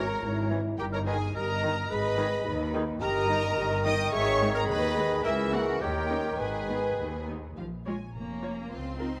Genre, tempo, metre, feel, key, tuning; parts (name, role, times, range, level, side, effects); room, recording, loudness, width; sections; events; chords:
cinematic, playful, whimsical film cue; 107 BPM; 2/4; straight; G# minor; A4 = 439 Hz
warm studio violin section; melody; 0.0-9.2 s; E5 to D#6; -38 LUFS; equal
bright flute section; second line; 0.0-7.3 s; A#4 to G5; -38 LUFS; equal
clear clarinet; second line; 0.0-7.3 s; G#4 to C#5; -40 LUFS; equal
rich chamber violin section; second line; 0.0-9.2 s; Db4 to D#5; -38 LUFS; equal
warm oboe; second line; 0.0-7.3 s; E4 to D#5; -38 LUFS; equal
clear bassoon; accompaniment; 0.0-7.3 s; D#3 to E3; -37 LUFS; equal
warm studio viola section; accompaniment; 0.0-9.1 s; D#3 to Db5; -41 LUFS; equal
mellow French horn section; sustained chords; 0.0-7.2 s; D#4 to B4; -36 LUFS; equal
rich studio double bass section; bass; 0.0-9.2 s; F1 to D#2; -38 LUFS; equal
warm chamber cello section; bass; 0.0-9.2 s; C#2 to C4; -38 LUFS; equal
moderate scoring stage reverb, RT60 1.8 s; close, detailed microphones; -29 LUFS; mono
0.0-7.6 A section; 7.6-9.2 B section
0.0 A#m7b5/G#; 0.8 D#/G; 1.9 G#m; 3.0 D#/G; 4.1 G#m; 5.2 A#dim/C#; 5.8 D#7; 6.4 G#m; 7.6 Bbm